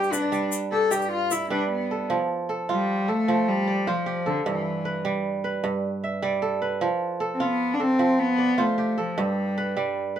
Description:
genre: west african traditional, West African string and xylophone music.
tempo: 102 BPM (dotted quarters).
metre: 12/8.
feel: straight.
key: F lydian.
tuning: A4 = 440 Hz.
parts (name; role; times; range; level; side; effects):
warm cello; melody; 0.0-10.0 s; D3 to A4; -24 LUFS; left 2 dB; none.
kora; arpeggios; 0.0-10.2 s; G2 to E5; -26 LUFS; right 3 dB; none.
tube shaker; percussion; 0.0-1.4 s; none; -33 LUFS; left 5 dB; none.
room: moderate studio ambience, RT60 0.5 s.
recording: band playing live in one room.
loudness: -22 LUFS.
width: side -10 dB against mid.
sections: 0.0-2.1 A section; 2.1-10.2 B section.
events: cello solo 0.0-2.1.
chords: 0.0 G; 2.1 F; 4.5 G; 6.8 F; 9.2 G.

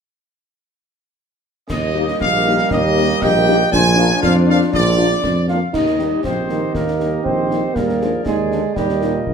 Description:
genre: military-style march for wind band.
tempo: 119 BPM.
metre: 2/4.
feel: straight.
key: Eb major.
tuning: A4 = 442 Hz.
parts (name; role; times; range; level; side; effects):
clear trumpet section; melody; 1.7-9.2 s; G4 to Ab5; -21 LUFS; equal; none.
dark woodwind section; second line; 1.7-9.3 s; F4 to Eb5; -23 LUFS; right 1 dB; none.
mellow trombone section; sustained chords; 1.7-9.3 s; Bb2 to D4; -24 LUFS; equal; none.
warm tuba; bass; 1.7-9.3 s; Bb1 to F2; -20 LUFS; right 2 dB; none.
concert snare drum, clash cymbals and concert bass drum; drums; 1.7-9.3 s; none; -27 LUFS; left 3 dB; none.
dark French horn section; accompaniment; 1.9-9.1 s; G3 to G4; -24 LUFS; left 6 dB; none.
warm euphonium; second line; 5.5-9.2 s; G3 to F4; -20 LUFS; right 2 dB; none.
room: moderate large studio reverb, RT60 1.0 s.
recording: minimal, uncompressed stereo recording.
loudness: -14 LUFS.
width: side -6 dB against mid.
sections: 1.7-5.7 A section; 5.7-9.3 B section.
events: none.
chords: 1.7 Eb; 3.7 Bb7; 5.7 Eb; 7.8 Bb7/Eb; 8.8 Eb.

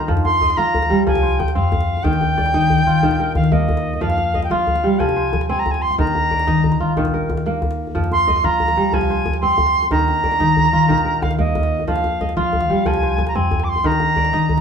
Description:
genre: west african traditional, West African string and xylophone music.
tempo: 122 BPM (dotted quarters).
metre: 12/8.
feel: straight.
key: F dorian.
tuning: A4 = 439 Hz.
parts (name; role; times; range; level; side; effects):
bright reedy silver concert flute; melody; 0.0-14.6 s; Eb5 to D6; -19 LUFS; right 1 dB; none.
kora; arpeggios; 0.0-14.6 s; Eb3 to Eb5; -21 LUFS; right 1 dB; none.
djembe; percussion; 0.0-14.6 s; none; -24 LUFS; left 1 dB; none.
upright bass; bass; 0.1-14.6 s; Bb1 to F3; -22 LUFS; left 1 dB; none.
room: wet studio reverb, RT60 0.8 s.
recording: band playing live in one room, small room ambience.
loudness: -15 LUFS.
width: side -7 dB against mid.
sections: 0.1-14.6 A section.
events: none.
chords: 0.1 F5; 2.1 Eb; 4.0 Fm; 6.0 Eb5; 7.9 Fm; 9.9 Eb5; 11.9 Fm; 13.8 Eb5.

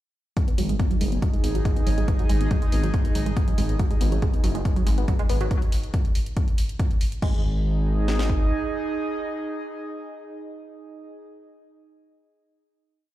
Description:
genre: driving peak-time techno.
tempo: 140 BPM.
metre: 4/4.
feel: straight.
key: G# minor.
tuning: A4 = 440 Hz.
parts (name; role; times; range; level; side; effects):
tight sequenced synth; riff; 0.4-7.4 s; F#3 to B3; -30 LUFS; right 1 dB; chorus, phaser, sidechain pumping, ping-pong delay.
techno drum kit; drums; 0.4-8.4 s; kick drum, snare drum; -23 LUFS; equal; none.
techno drum kit; drums; 0.4-7.3 s; crash cymbal, hi-hat; -39 LUFS; right 1 dB; none.
airy breathy pad; texture; 0.4-11.2 s; D#4 to D#5; -31 LUFS; right 2 dB; chorus, sidechain pumping.
dark detuned saw bass; bass; 0.6-8.5 s; F#1 to G#1; -24 LUFS; equal; sidechain pumping.
room: little or no reverb.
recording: played on a big sound system in a bare room, large studio reverb.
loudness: -21 LUFS.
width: side -14 dB against mid.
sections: 0.4-7.2 groove; 7.2-10.7 final chord.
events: filter sweep on synth arpeggio sound 0.4-5.5.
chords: 0.4 G#5.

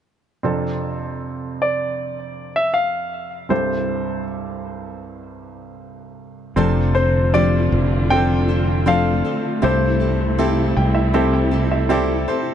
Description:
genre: pop.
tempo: 79 BPM.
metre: 4/4.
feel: straight.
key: unclear.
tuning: A4 = 441 Hz.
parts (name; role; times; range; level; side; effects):
clear baby grand piano; accompaniment; 0.4-12.5 s; C2 to G5; -23 LUFS; right 2 dB; none.
bright concert grand piano; melody; 1.6-10.4 s; C5 to G5; -22 LUFS; left 1 dB; tape echo.
warm studio string section; sustained chords; 6.6-12.5 s; C3 to F4; -25 LUFS; right 1 dB; stereo widening.
picked steel-string acoustic guitar; arpeggios; 6.6-12.5 s; F3 to C5; -24 LUFS; left 7 dB; none.
fretless electric bass; bass; 6.6-12.2 s; F1 to C2; -19 LUFS; equal; none.
room: light reverb, small room ambience.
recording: nothing above 11.0 kHz.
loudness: -17 LUFS.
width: side -9 dB against mid.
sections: 0.4-6.6 A section; 6.6-12.5 B section.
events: grand piano fill 10.4-12.5.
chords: 0.4 F6; 3.5 C6; 6.6 F6; 9.6 C6.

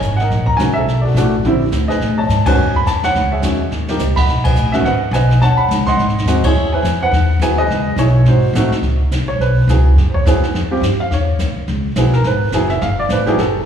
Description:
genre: jazz piano trio.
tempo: 211 BPM.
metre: 4/4.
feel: swing 59% on 8ths.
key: C# minor.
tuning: A4 = 439 Hz.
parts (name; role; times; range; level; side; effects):
warm upright piano; melody; 0.0-13.7 s; D3 to B#5; -17 LUFS; right 1 dB; slapback echo.
upright bass; bass; 0.0-13.7 s; F#1 to A2; -15 LUFS; equal; none.
jazz brush drum kit; drums; 0.0-13.7 s; brushed snare drum, crash cymbal, hi-hat, kick drum, ride cymbal, snare drum; -22 LUFS; equal; slapback echo.
room: light reverb, studio reverb.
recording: live gig heard through the venue's PA, recital hall reverb, small room ambience.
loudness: -13 LUFS.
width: side -8 dB against mid.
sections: 0.0-8.8 A section; 8.8-13.7 B section.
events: band accent 2.4, 4.4, 6.4; drum fill 3.7; upright piano solo 8.8-13.7.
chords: 0.0 F#69; 0.9 Bm7; 1.4 A#9; 2.0 Amaj9#11; 3.2 C#madd11; 3.7 D#7(no3); 4.3 G#m7; 5.4 B9; 6.0 G#7; 6.6 C#m7; 8.3 G#7b9; 8.8 C#7(no3); 10.0 Emaj9; 10.5 Fsus2; 11.1 E5; 12.2 F#9sus4; 12.8 Gadd9.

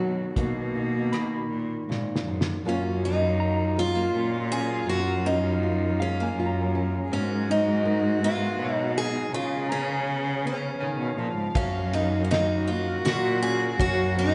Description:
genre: acoustic folk-pop ballad.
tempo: 80 BPM.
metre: 3/4.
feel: straight.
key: unclear.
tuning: A4 = 440 Hz.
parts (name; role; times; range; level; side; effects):
warm cello; second line; 0.0-14.3 s; F#3 to Ab4; -35 LUFS; equal; none.
nylon-string guitar; accompaniment; 0.0-14.3 s; F#2 to Bb4; -34 LUFS; equal; none.
clean electric guitar; arpeggios; 0.0-14.3 s; Db5 to B5; -40 LUFS; equal; harmonic tremolo.
rich cello; bass; 0.0-14.3 s; Gb2 to Db3; -30 LUFS; equal; none.
cloth-damped thuddy drum kit; drums; 0.4-2.6, 11.6-14.0 s; hi-hat, kick drum, ride cymbal, rim click, snare drum; -33 LUFS; equal; none.
sweeping resonant pad; sustained chords; 2.6-14.3 s; Db3 to F5; -42 LUFS; equal; chorus.
picked steel-string acoustic guitar; melody; 2.7-14.3 s; Db4 to Ab4; -30 LUFS; equal; none.
room: wet concert hall reverb, RT60 2.0 s.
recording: recorded in a church or concert hall, nothing above 10.5 kHz.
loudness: -26 LUFS.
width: mono.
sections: 0.0-2.6 A section; 2.6-14.3 B section.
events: cello solo 0.0-2.6; drum fill 1.9-2.6.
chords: 0.0 Bmaj7; 2.6 Gbmaj7; 7.1 Abm9; 9.3 Db7; 11.6 Gbmaj7.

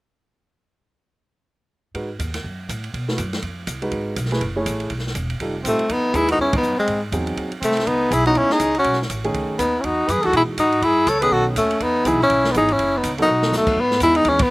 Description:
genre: jazz, small-group swing and bop.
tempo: 244 BPM.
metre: 4/4.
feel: swing 59% on 8ths.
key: E major.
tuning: A4 = 440 Hz.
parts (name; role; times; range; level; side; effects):
warm grand piano; accompaniment; 1.9-14.4 s; D#3 to C#5; -25 LUFS; right 1 dB; none.
upright bass; bass; 1.9-14.5 s; E1 to B2; -28 LUFS; equal; none.
open jazz drum kit; drums; 1.9-14.4 s; crash cymbal, hi-hat, kick drum, ride cymbal, snare drum; -29 LUFS; right 1 dB; none.
clear trumpet; second line; 5.6-13.7 s; C4 to C#5; -25 LUFS; right 2 dB; slapback echo.
breathy tenor saxophone; melody; 5.7-14.5 s; G#3 to A4; -17 LUFS; left 1 dB; none.
room: little or no reverb.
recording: recorded outdoors, with no room sound.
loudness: -17 LUFS.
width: side -21 dB against mid.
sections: 1.9-5.9 A section; 5.9-13.8 B section.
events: band accent 6.5; drum fill 13.3.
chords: 1.9 G#m7; 2.4 F#m; 2.9 B7sus4; 3.4 F5; 3.9 G#m7; 4.4 F#m9; 4.9 Bsus4; 5.4 F9; 5.9 Emaj7; 6.9 G#7; 7.9 C#m9; 8.8 B13; 9.8 Emaj9; 10.8 F#m9; 11.3 B9; 11.8 Emaj7; 12.8 F#m; 13.3 B7; 13.8 Emaj7.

